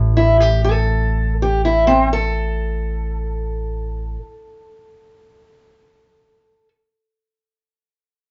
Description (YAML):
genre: acoustic country blues, solo or duo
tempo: free time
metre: none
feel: none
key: unclear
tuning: A4 = 440 Hz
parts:
  - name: fingerpicked steel-string acoustic guitar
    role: melody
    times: 0.0-6.7 s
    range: A2 to A4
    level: -21 LUFS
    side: equal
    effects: none
  - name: upright bass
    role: bass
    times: 0.0-4.2 s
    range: A1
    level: -22 LUFS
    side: equal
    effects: none
room: light reverb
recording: band playing live in one room, nothing above 7.7 kHz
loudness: -18 LUFS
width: mono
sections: 0.0-5.5 A section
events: none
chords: none